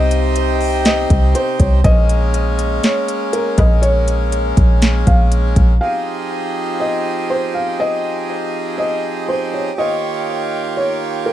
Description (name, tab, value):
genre	hip hop, atmospheric cloud-rap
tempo	121 BPM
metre	4/4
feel	half-time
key	F minor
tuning	A4 = 440 Hz
part	felt-muted upright piano	melody	0.0-11.3 s	Bb4 to F5	-21 LUFS	left 1 dB	ping-pong delay
part	accordion	sustained chords	0.0-11.3 s	C3 to Db5	-20 LUFS	right 1 dB	sidechain pumping
part	soft 808-style bass	bass	0.0-5.8 s	Bb1 to C2	-14 LUFS	equal	none
part	smooth R&B drum kit	drums	0.1-5.7 s	hi-hat, kick drum, rim click, snare drum	-16 LUFS	equal	overdrive, vintage 12-bit sampler grit
room	small room ambience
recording	dark, warm production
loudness	-14 LUFS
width	side -12 dB against mid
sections	0.0-5.8 A section; 5.8-11.3 B section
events	none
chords	0.0 Cm; 1.8 Bbm7; 5.8 Fm7; 9.8 Eb7